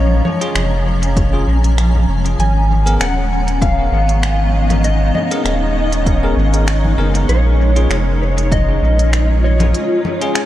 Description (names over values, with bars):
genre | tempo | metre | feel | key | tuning
ambient dub | 98 BPM | 4/4 | swing 54% on 16ths | G# dorian | A4 = 439 Hz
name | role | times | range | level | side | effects
electric slide guitar | melody | 0.0-10.5 s | C#5 to G#5 | -22 LUFS | equal | analog chorus, dub echo
granular cloud pad | sustained chords | 0.0-10.5 s | E#3 to A#5 | -21 LUFS | left 1 dB | built-in reverb, ensemble chorus
warm sub bass | bass | 0.0-9.7 s | D#1 to A#1 | -14 LUFS | equal | none
organic electronic drum kit | drums | 0.2-10.5 s | congas, finger snaps, hi-hat | -24 LUFS | left 1 dB | studio reverb, dub echo
bell-like tine electric piano | stabs | 0.4-10.4 s | B3 to A#4 | -26 LUFS | left 1 dB | lush chorus, dub echo
electronic kick drum | drums | 1.2-8.6 s | none | -18 LUFS | equal | overdrive, studio reverb
bubbling stepped-filter texture | texture | 2.9-10.5 s | C#4 to C#5 | -26 LUFS | left 3 dB | chorus, built-in reverb
room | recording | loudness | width
light reverb, digital ambience | none | -12 LUFS | side -13 dB against mid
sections
0.0-10.5 A section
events
break 9.7-10.5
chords
0.0 A#m7; 2.4 G#madd9; 7.3 A#m7